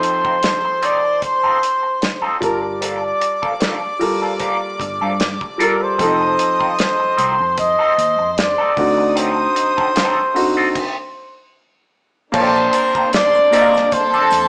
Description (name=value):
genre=lush 1970s-style soul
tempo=76 BPM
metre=4/4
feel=swing 54% on 16ths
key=G minor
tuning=A4 = 440 Hz
part: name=warm flugelhorn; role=melody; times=0.0-14.5 s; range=Bb4 to Eb5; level=-16 LUFS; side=equal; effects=none
part: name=warm studio violin section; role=second line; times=0.0-14.5 s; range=Eb4 to Eb6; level=-24 LUFS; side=equal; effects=none
part: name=warm baby grand piano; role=accompaniment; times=0.0-14.5 s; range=D3 to A5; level=-22 LUFS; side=equal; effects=none
part: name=electric guitar through a small old amp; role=riff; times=0.0-14.4 s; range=F3 to C5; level=-22 LUFS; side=equal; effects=wah
part: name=damped 70s drum kit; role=drums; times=0.0-14.5 s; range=crash cymbal, hi-hat, kick drum, snare drum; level=-22 LUFS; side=equal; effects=none
part: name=vintage muted fingered electric bass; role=bass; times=2.4-14.5 s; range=F1 to G2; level=-29 LUFS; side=equal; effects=none
part: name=warm studio string section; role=sustained chords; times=12.3-14.5 s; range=C3 to D4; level=-27 LUFS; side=equal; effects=none
part: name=triangle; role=percussion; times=12.3-14.5 s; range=none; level=-37 LUFS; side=equal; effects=none
room=moderate stone room reverb, RT60 1.0 s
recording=band playing live in one room, small speaker sound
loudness=-14 LUFS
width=side -40 dB against mid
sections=0.0-12.3 A section; 12.3-14.5 B section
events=stop 10.8-12.3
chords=0.0 F7; 2.4 Gm9; 6.0 F7; 8.8 D7b9; 12.3 Bbmaj9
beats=0.43 1.23 2.02 | 2.82 3.61 4.40 5.20 | 5.99 6.79 7.58 8.38 | 9.17 9.96 10.76 11.55 | 12.34 13.13 13.92